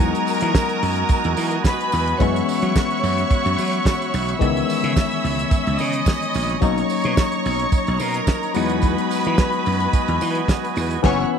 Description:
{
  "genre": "disco",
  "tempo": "109 BPM",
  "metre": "4/4",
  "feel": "straight",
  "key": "unclear",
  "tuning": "A4 = 440 Hz",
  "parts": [
    { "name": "rich studio string section", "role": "second line", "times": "0.0-11.2 s", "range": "A#4 to E6", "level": "-24 LUFS", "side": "left 1 dB", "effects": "slapback echo" },
    { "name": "mellow tine electric piano", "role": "accompaniment", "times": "0.0-11.4 s", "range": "D#3 to D#4", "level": "-24 LUFS", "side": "left 12 dB", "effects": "none" },
    { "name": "overdriven tonewheel organ", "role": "sustained chords", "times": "0.0-11.4 s", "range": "C#4 to B5", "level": "-27 LUFS", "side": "right 14 dB", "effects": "lush chorus" },
    { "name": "slap bass", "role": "bass", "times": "0.0-11.2 s", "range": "F#1 to F#3", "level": "-23 LUFS", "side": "right 2 dB", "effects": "none" },
    { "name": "damped 70s drum kit", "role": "drums", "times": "0.0-11.2 s", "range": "crash cymbal, hi-hat, kick drum, snare drum", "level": "-22 LUFS", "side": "right 1 dB", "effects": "none" },
    { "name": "tambourine", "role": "percussion", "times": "0.3-10.9 s", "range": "none", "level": "-38 LUFS", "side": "right 18 dB", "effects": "none" }
  ],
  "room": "light reverb, small room ambience",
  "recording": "1960s-style stereo with parts hard left and right",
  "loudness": "-18 LUFS",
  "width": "side -7 dB against mid",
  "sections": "0.0-11.4 A section",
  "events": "band accent 11.0-11.4",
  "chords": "0.0 Emaj9; 2.2 F#7sus4; 4.4 C#m9; 6.6 Bmaj9; 8.6 Emaj9"
}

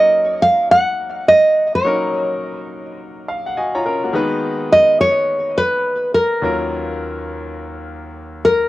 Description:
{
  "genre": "R&B",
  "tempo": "105 BPM",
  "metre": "4/4",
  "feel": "swing 63% on 16ths",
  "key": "Eb minor",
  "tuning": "A4 = 440 Hz",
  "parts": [
    { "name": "nylon-string guitar", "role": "melody", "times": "0.0-8.7 s", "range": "Bb4 to Gb5", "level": "-14 LUFS", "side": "equal", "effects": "cassette tape" },
    { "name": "bright concert grand piano", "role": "accompaniment", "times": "0.0-8.7 s", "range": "Eb2 to Bb5", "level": "-23 LUFS", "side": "left 2 dB", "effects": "cassette tape" }
  ],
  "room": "light reverb",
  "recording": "home recording on cassette",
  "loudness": "-14 LUFS",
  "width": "side -16 dB against mid",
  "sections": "0.0-8.7 A section",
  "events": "grand piano fill 3.0-4.1",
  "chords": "0.0 Ebm7; 4.1 Abm7/Eb; 6.4 Gbmaj7/Eb"
}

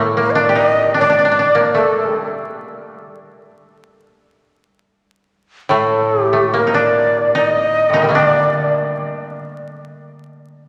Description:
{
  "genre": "japanese traditional, Japanese chamber music",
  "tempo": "76 BPM",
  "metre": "2/4",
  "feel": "rubato",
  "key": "D miyako bushi",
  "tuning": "A4 = 441 Hz",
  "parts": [
    { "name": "breathy bright shakuhachi", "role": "melody", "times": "0.0-2.3, 5.7-8.7 s", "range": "A4 to Eb5", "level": "-18 LUFS", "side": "equal", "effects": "none" },
    { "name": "koto", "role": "second line", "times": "0.0-10.7 s", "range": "A2 to G4", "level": "-20 LUFS", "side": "equal", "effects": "none" },
    { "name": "koto", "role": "accompaniment", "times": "0.0-1.7, 5.7-8.1 s", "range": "A2", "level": "-25 LUFS", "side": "equal", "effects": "none" }
  ],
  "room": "wet church reverb, RT60 2.8 s",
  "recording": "vinyl crackle",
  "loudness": "-15 LUFS",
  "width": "mono",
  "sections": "0.0-10.7 A section",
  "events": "none",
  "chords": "none"
}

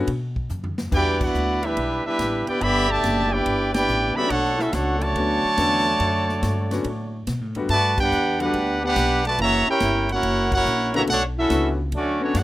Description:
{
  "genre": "jazz, big band swing",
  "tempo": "142 BPM",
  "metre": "4/4",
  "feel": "swing 67% on 8ths",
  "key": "B minor",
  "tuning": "A4 = 440 Hz",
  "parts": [
    { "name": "clear concert grand piano", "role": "accompaniment", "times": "0.0-1.2, 4.2-12.3 s", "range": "D3 to A4", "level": "-26 LUFS", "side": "left 3 dB", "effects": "none" },
    { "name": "upright bass", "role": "bass", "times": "0.0-12.4 s", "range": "F#1 to B2", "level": "-26 LUFS", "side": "equal", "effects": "none" },
    { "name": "swinging big-band drum kit", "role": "drums", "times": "0.1-12.4 s", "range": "crash cymbal, hi-hat, kick drum, ride cymbal, snare drum, toms", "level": "-31 LUFS", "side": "equal", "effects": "none" },
    { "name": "clear trumpet section", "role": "melody", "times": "0.9-12.4 s", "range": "A3 to B5", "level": "-22 LUFS", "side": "right 1 dB", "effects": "none" },
    { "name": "warm trombone section", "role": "second line", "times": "0.9-12.4 s", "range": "B2 to G4", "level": "-26 LUFS", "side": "equal", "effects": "none" }
  ],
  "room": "moderate small room reverb, RT60 0.5 s",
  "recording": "rough home demo mix",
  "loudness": "-19 LUFS",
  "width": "side -16 dB against mid",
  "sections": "0.0-12.4 A section",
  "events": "drum fill 0.5-0.9; band accent 1.1, 3.7, 7.9, 10.4",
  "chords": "0.0 B5; 0.9 Em7; 4.3 Bm9; 7.7 Gmaj7; 9.4 F#7; 11.1 Bm9"
}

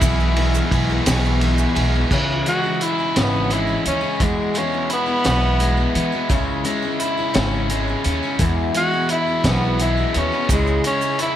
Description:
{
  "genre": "folk rock and heartland rock",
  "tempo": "57 BPM (dotted quarters)",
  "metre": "6/8",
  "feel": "straight",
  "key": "E major",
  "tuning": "A4 = 440 Hz",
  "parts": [
    { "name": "breathy tenor saxophone", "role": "melody", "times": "0.0-11.4 s", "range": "G#3 to F#4", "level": "-23 LUFS", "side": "equal", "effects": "slapback echo" },
    { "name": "picked twelve-string acoustic guitar", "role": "accompaniment", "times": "0.0-11.4 s", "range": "B2 to G#4", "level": "-24 LUFS", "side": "left 5 dB", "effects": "none" },
    { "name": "overdriven electric guitar", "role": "riff", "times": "0.0-11.4 s", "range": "E2 to G#4", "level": "-23 LUFS", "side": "right 1 dB", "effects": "none" },
    { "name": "upright bass", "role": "bass", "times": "0.0-10.8 s", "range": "G#1 to E3", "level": "-21 LUFS", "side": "right 1 dB", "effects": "none" },
    { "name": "vintage drum kit", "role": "drums", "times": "0.0-11.4 s", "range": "crash cymbal, hi-hat, kick drum, ride cymbal, snare drum", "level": "-24 LUFS", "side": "right 1 dB", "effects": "none" },
    { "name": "tube shaker", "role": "percussion", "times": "0.0-1.8, 10.5-11.3 s", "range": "none", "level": "-34 LUFS", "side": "right 12 dB", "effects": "none" }
  ],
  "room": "light reverb, studio reverb",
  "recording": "none",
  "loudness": "-17 LUFS",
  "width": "side -11 dB against mid",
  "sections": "0.0-2.1 A section; 2.1-11.4 B section",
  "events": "tenor saxophone solo 2.1-11.4",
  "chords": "0.0 E/B; 2.1 C#m; 4.2 Eadd9; 6.3 C#m; 8.4 Eadd9; 10.5 C#m"
}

